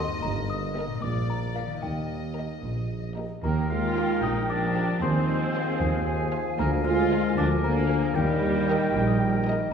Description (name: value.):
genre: cinematic, playful, whimsical film cue.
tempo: 76 BPM (dotted quarters).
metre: 6/8.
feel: straight.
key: Eb major.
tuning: A4 = 441 Hz.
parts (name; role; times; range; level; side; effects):
small celesta; melody; 0.0-9.4 s; F5 to F6; -38 LUFS; left 2 dB; none.
warm chamber violin section; melody; 0.0-9.7 s; D5 to Ab5; -40 LUFS; left 5 dB; none.
rich chamber violin section; second line; 0.0-9.7 s; G4 to F5; -37 LUFS; left 2 dB; none.
rich studio viola section; accompaniment; 0.0-9.4 s; G3 to G4; -30 LUFS; right 3 dB; none.
concert harp; arpeggios; 0.0-9.7 s; G2 to F6; -34 LUFS; left 4 dB; none.
mellow tuba; bass; 0.0-9.6 s; G1 to Eb2; -31 LUFS; right 2 dB; none.
warm chamber double bass section; bass; 0.0-9.6 s; G1 to Eb2; -33 LUFS; right 2 dB; none.
warm symphonic cello section; bass; 0.0-9.6 s; D2 to Eb3; -35 LUFS; right 1 dB; none.
clear clarinet; second line; 3.4-9.7 s; Ab4 to Bb4; -36 LUFS; left 4 dB; none.
clear oboe; second line; 3.4-9.5 s; G4 to F5; -36 LUFS; equal; none.
flute section; second line; 3.4-9.5 s; G5 to Ab5; -34 LUFS; right 2 dB; none.
mellow bassoon; accompaniment; 3.4-9.7 s; Eb3 to Bb3; -33 LUFS; equal; none.
mellow French horn section; sustained chords; 3.4-9.5 s; Bb2 to Ab3; -31 LUFS; left 5 dB; none.
room: wet scoring stage reverb, RT60 1.9 s.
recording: heard from further back in the room.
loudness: -23 LUFS.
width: side -7 dB against mid.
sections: 0.0-3.4 A section; 3.4-9.7 B section.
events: none.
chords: 0.2 Eb/G; 1.0 Bb; 1.8 Eb; 5.0 Fm7/Eb; 6.6 Bb7/D; 8.2 Eb.